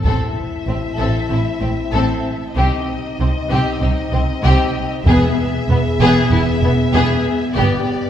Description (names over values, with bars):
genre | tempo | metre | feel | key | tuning
cinematic, epic orchestral film score | 96 BPM | 4/4 | straight | A minor | A4 = 440 Hz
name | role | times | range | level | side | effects
warm symphonic violin section | second line | 0.0-7.8 s | B3 to A4 | -22 LUFS | left 2 dB | none
warm symphonic double bass section | bass | 0.0-7.7 s | E1 to C2 | -19 LUFS | right 2 dB | none
taiko ensemble | drums | 0.0-1.3, 5.1-6.3 s | none | -20 LUFS | equal | none
warm studio violin section | melody | 0.1-8.1 s | D5 to E5 | -28 LUFS | left 5 dB | none
warm symphonic viola section | accompaniment | 0.1-7.9 s | B3 to C4 | -23 LUFS | left 1 dB | none
mellow French horn section | sustained chords | 0.1-8.1 s | B3 to G#4 | -24 LUFS | left 2 dB | none
rich symphonic cello section | bass | 0.1-7.7 s | E2 to C3 | -24 LUFS | right 1 dB | none
cymbal swell | sound effects | 7.9-8.1 s | none | -40 LUFS | left 3 dB | none
room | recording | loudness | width
wet concert hall reverb, RT60 2.4 s | heard from further back in the room | -15 LUFS | side -10 dB against mid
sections
0.1-8.1 A section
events
none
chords
0.1 Am; 2.6 Cm; 5.1 E; 7.6 G